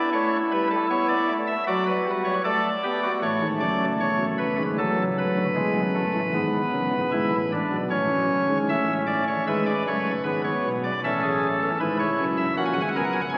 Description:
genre	classical, baroque-style 4-part fugue for pipe organ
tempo	77 BPM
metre	4/4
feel	straight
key	unclear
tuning	A4 = 440 Hz
part	pipe organ, cornet	solo	0.0-13.4 s	C#1 to G#5	-24 LUFS	equal	none
room	wet cathedral reverb, RT60 4.8 s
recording	very old 78 rpm record, vinyl crackle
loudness	-24 LUFS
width	mono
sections	0.0-9.5 A section; 9.5-13.4 B section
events	none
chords	0.1 A7; 1.7 D/F#; 3.2 A; 4.8 Bm7; 6.3 E7; 7.9 A; 12.6 F#

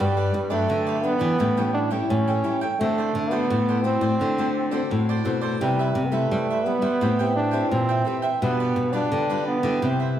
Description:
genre	samba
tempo	86 BPM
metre	4/4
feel	straight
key	G major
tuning	A4 = 440 Hz
part	breathy trombone	melody	0.0-10.2 s	G3 to D4	-24 LUFS	right 2 dB	none
part	cavaquinho	accompaniment	0.0-10.2 s	E4 to G5	-30 LUFS	right 4 dB	none
part	nylon-string guitar	accompaniment	0.0-10.2 s	G2 to B4	-29 LUFS	left 4 dB	none
part	nylon-string guitar	bass	0.0-10.2 s	G2 to G3	-25 LUFS	left 1 dB	none
room	wet large studio reverb, RT60 1.2 s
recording	heard from further back in the room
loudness	-20 LUFS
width	side -10 dB against mid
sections	0.0-10.2 A section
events	none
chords	0.0 Gmaj7; 1.4 A7; 2.8 D7; 5.6 Cmaj7; 7.0 Am9; 8.4 G7/B

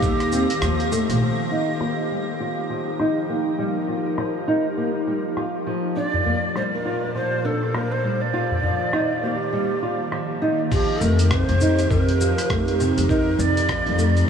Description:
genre	organic downtempo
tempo	101 BPM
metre	4/4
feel	swing 60% on 16ths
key	F mixolydian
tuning	A4 = 444 Hz
part	breathy hollow Native American-style cedar flute	melody	0.0-0.9, 6.0-14.3 s	G4 to D5	-26 LUFS	right 2 dB	analog delay
part	ethereal airy pad	sustained chords	0.0-14.3 s	Bb2 to Bb5	-27 LUFS	right 1 dB	ensemble chorus, built-in reverb, phaser, sidechain pumping
part	nylon-string guitar	arpeggios	0.0-14.2 s	C3 to F4	-24 LUFS	equal	low-pass filter, analog delay
part	upright bass	bass	0.0-1.2, 11.0-14.2 s	Bb1 to F2	-21 LUFS	left 1 dB	sidechain pumping
part	dusty soul sampler-style drum kit	drums	0.0-14.3 s	crash cymbal, hi-hat, rim click, shaker	-34 LUFS	equal	low-pass filter on hats, low-pass filter on perc, low-pass filter on snare, low-pass filter on cymbals
part	electronic kick drum	drums	0.0-0.2, 10.7-13.8 s	none	-24 LUFS	equal	none
part	twinkling granular texture	texture	0.0-1.2 s	Bb6	-35 LUFS	right 2 dB	built-in reverb, analog chorus
part	udu	percussion	6.1-8.8 s	none	-29 LUFS	left 1 dB	none
room	wet huge ambient reverb, RT60 7.5 s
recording	dreamy mix soaked in reverb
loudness	-20 LUFS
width	side -7 dB against mid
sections	0.0-1.2 A section; 1.2-10.7 B section; 10.7-14.3 A section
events	kick drops out 0.6-1.2; filter sweep on nylon-string guitar 1.2-10.7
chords	0.0 Eb; 1.2 F9sus4; 6.0 Bbmaj9; 8.3 Ebmaj7; 10.7 F9sus4

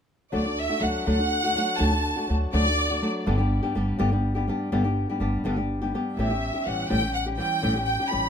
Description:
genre	mexican folk, mariachi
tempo	82 BPM (dotted quarters)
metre	6/8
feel	straight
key	D major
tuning	A4 = 440 Hz
part	rich studio violin section	melody	0.3-3.0, 6.2-8.3 s	D5 to B5	-26 LUFS	right 1 dB	tape echo
part	flamenco guitar	accompaniment	0.3-8.3 s	G2 to G4	-26 LUFS	left 1 dB	none
part	upright bass	bass	0.3-8.3 s	G1 to D2	-28 LUFS	right 1 dB	none
room	light reverb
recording	close, detailed microphones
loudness	-22 LUFS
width	side -7 dB against mid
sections	0.3-8.3 A section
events	none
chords	0.3 D; 3.3 G; 6.2 A7

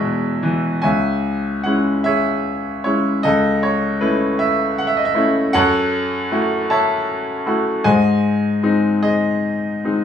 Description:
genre	classical, lyrical solo piano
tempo	51 BPM (dotted quarters)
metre	6/8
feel	uneven beats, rubato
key	C# minor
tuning	A4 = 440 Hz
part	bright grand piano	solo	0.0-10.0 s	C#2 to A5	-16 LUFS	left 1 dB	none
room	light reverb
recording	studio reverb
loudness	-16 LUFS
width	side -8 dB against mid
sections	0.8-10.0 A section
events	none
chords	0.0 E; 0.8 C#m; 3.2 A/C#; 5.5 F#m7; 7.8 G#

